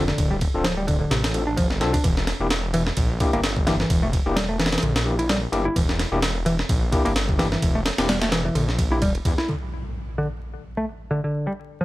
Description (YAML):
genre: breakbeat, breaks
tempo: 129 BPM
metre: 4/4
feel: swing 56% on 16ths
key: unclear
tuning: A4 = 441 Hz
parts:
  - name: picked electric bass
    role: riff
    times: 0.0-11.8 s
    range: C3 to E4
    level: -25 LUFS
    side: equal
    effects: low-pass filter, ping-pong delay
  - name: overdriven tine electric piano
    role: stabs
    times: 0.0-9.0 s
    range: Bb3 to A4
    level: -28 LUFS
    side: left 2 dB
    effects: medium tremolo, ping-pong delay
  - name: detuned saw bass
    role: bass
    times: 0.0-9.3 s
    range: D1 to E2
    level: -26 LUFS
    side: equal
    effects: none
  - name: breakbeat sampler-style drum kit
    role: drums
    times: 0.1-9.5 s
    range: kick drum, ride cymbal, snare drum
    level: -23 LUFS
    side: equal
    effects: none
  - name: impact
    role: sound effects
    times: 9.5-11.3 s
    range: none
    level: -34 LUFS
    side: equal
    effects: none
room: little or no reverb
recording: vinyl crackle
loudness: -20 LUFS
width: side -17 dB against mid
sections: 0.0-9.5 A section; 9.5-11.8 B section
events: impact 9.5-11.3; filter sweep on picked electric bass 9.5-11.8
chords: 0.0 Dm7; 2.0 Em7b5; 9.5 N.C.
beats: | 0.18 0.65 1.11 1.57 | 2.04 2.50 2.97 3.44 | 3.90 4.37 4.83 5.30 | 5.76 6.23 6.69 7.16 | 7.62 8.09 8.55 9.02 | 9.48 9.95 10.41 10.88 | 11.34 11.81